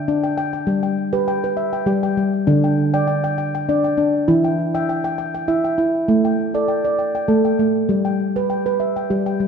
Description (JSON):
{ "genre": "world meditative, meditative tuned percussion", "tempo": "100 BPM", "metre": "3/4", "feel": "swing 53% on 16ths", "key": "G major pentatonic", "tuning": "A4 = 440 Hz", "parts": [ { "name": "handpan", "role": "solo", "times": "0.0-9.5 s", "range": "D3 to G5", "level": "-17 LUFS", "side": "equal", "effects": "ping-pong delay" } ], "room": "wet scoring stage reverb, RT60 1.6 s, studio reverb", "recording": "dark, warm production", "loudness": "-17 LUFS", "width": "side -6 dB against mid", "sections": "0.7-9.5 A section", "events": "none", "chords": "0.0 Dsus4; 0.7 G; 2.5 Dsus4; 4.3 Em; 6.1 A7sus4; 7.9 G" }